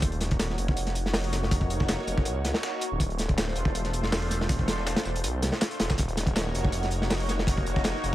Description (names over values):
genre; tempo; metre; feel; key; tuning
drum and bass, jungle; 161 BPM; 4/4; straight; unclear; A4 = 441 Hz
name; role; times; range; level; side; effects
lush unison pad; sustained chords; 0.0-8.1 s; A3 to Db5; -33 LUFS; equal; chorus, phaser
detuned saw bass; bass; 0.0-8.1 s; D1 to Db2; -30 LUFS; equal; none
crunchy breakbeat drum kit; drums; 0.0-8.1 s; hi-hat, kick drum, snare drum; -28 LUFS; equal; none
dusty soul sampler-style drum kit; drums; 0.0-8.1 s; hi-hat, snare drum, tambourine; -37 LUFS; left 1 dB; high-pass filter on perc, high-pass filter on snare, high-pass filter on hats
room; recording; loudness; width
small room ambience; none; -25 LUFS; side -15 dB against mid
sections
0.0-8.1 A section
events
drop 0.0-8.1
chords
0.0 Ebm7; 3.0 Dm7; 6.0 Ebm7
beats
| 0.02 0.40 0.77 1.14 | 1.51 1.89 2.26 2.63 | 3.00 3.38 3.75 4.12 | 4.49 4.87 5.24 5.61 | 5.99 6.36 6.73 7.10 | 7.48 7.85